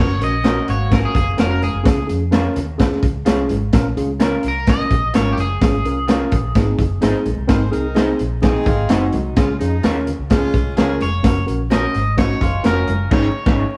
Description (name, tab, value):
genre	uptempo 1960s-style soul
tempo	128 BPM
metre	4/4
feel	straight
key	Db major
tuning	A4 = 440 Hz
part	electric guitar at the edge of break-up	melody	0.0-7.2, 11.0-13.8 s	G4 to Eb5	-26 LUFS	equal	none
part	mellow tine electric piano	accompaniment	0.0-13.6 s	C4 to C5	-24 LUFS	equal	none
part	vintage muted fingered electric bass	bass	0.0-13.6 s	F1 to F2	-24 LUFS	equal	none
part	crunchy breakbeat drum kit	drums	0.2-13.6 s	crash cymbal, hi-hat, kick drum, snare drum	-20 LUFS	equal	none
part	congas	percussion	0.2-13.0 s	none	-33 LUFS	equal	none
part	electric guitar through a small old amp	stabs	0.4-13.6 s	Eb4 to Db5	-30 LUFS	equal	spring reverb
part	electric guitar through a small old amp	riff	0.7-1.8, 8.4-9.3, 12.2-13.1 s	Db3 to Ab4	-31 LUFS	equal	none
part	warm horn section	second line	7.5-11.1 s	F3 to C5	-30 LUFS	equal	none
room	moderate stone room reverb, RT60 0.9 s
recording	band playing live in one room, vinyl crackle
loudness	-17 LUFS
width	mono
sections	0.0-13.8 A section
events	band accent 13.1-13.8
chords	0.0 Gb; 1.9 Db; 3.7 Bbm; 5.6 Db/Ab; 6.6 Ab; 9.4 Db; 11.2 Gb; 13.1 Absus4